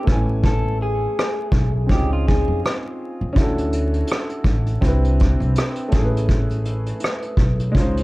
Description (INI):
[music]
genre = lo-fi hip hop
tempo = 82 BPM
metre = 4/4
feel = swing 59% on 16ths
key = unclear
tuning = A4 = 440 Hz
[part]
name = electric guitar through a small old amp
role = melody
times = 0.0-2.6 s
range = E#4 to A4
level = -27 LUFS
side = left 1 dB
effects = tape echo
[part]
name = warm upright piano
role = accompaniment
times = 0.0-8.0 s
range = G#3 to G#5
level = -25 LUFS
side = equal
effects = none
[part]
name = upright bass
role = bass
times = 0.1-8.0 s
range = A1 to E#2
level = -21 LUFS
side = equal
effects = none
[part]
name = vintage brush drum kit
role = drums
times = 0.1-8.0 s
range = hi-hat, kick drum, rim click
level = -20 LUFS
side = equal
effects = vintage 12-bit sampler grit
[sound]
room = light reverb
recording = dark, warm production, vinyl crackle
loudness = -17 LUFS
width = side -20 dB against mid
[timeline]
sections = 0.0-8.0 A section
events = break 0.0-3.4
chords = 0.1 Amaj9; 1.9 C#maj9; 3.4 Dmaj9; 4.8 Cmaj9; 5.9 Amaj9